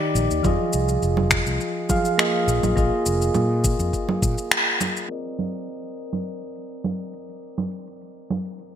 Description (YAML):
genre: sunset chillout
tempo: 103 BPM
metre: 4/4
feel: straight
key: C minor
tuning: A4 = 440 Hz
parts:
  - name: soft electric-piano-like synth keys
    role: accompaniment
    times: 0.0-8.8 s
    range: Eb3 to F5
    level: -25 LUFS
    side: right 1 dB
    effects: chorus, auto-pan, low-pass filter, ping-pong delay
  - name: fretless electric bass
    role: bass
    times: 0.2-4.3 s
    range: F1 to Bb2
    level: -23 LUFS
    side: equal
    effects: none
  - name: electronic shaker, congas and finger snaps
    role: drums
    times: 0.2-8.7 s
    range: none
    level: -24 LUFS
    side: right 1 dB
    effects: low-pass filter on perc, low-pass filter on snare
  - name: electronic kick drum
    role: drums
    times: 0.4-4.3 s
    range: none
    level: -24 LUFS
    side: equal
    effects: none
room: wet plate reverb, RT60 2.1 s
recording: bright 1980s-style digital production, low-pass filter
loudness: -20 LUFS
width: side -9 dB against mid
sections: 0.0-5.1 A section; 5.1-8.8 B section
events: band accent 4.5; filter sweep on drum 5.1-8.8; filter sweep on synth keys 5.1-8.8; filter sweep 5.1-8.8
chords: 0.4 Fm7; 2.5 Bb7sus4; 5.1 Cm9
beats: | 0.44 1.02 1.61 2.19 | 2.77 3.35 3.94 4.52 | 5.10 5.68 6.27 6.85 | 7.43 8.01 8.60